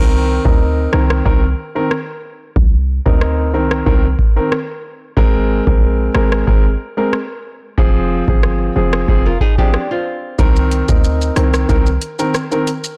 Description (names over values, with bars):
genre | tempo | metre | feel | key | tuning
dancehall | 92 BPM | 4/4 | straight | C minor | A4 = 440 Hz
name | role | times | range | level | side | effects
warm grand piano | accompaniment | 0.0-12.7 s | Eb3 to Bb4 | -21 LUFS | equal | sidechain pumping
short 808-style bass | bass | 0.0-12.0 s | F1 to D2 | -18 LUFS | equal | none
booming analog drum machine | drums | 0.5-13.0 s | hi-hat, kick drum, rim click, shaker | -18 LUFS | equal | soft clipping on snare
nylon-string guitar | arpeggios | 9.3-10.4 s | C4 to Bb4 | -23 LUFS | equal | none
room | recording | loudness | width
digital ambience | blown-out, overdriven recording, overdrive | -15 LUFS | mono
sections
0.0-13.0 A section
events
break 0.0-10.4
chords
0.0 Cm7; 5.2 Abadd9; 7.8 Fm; 10.4 Cm7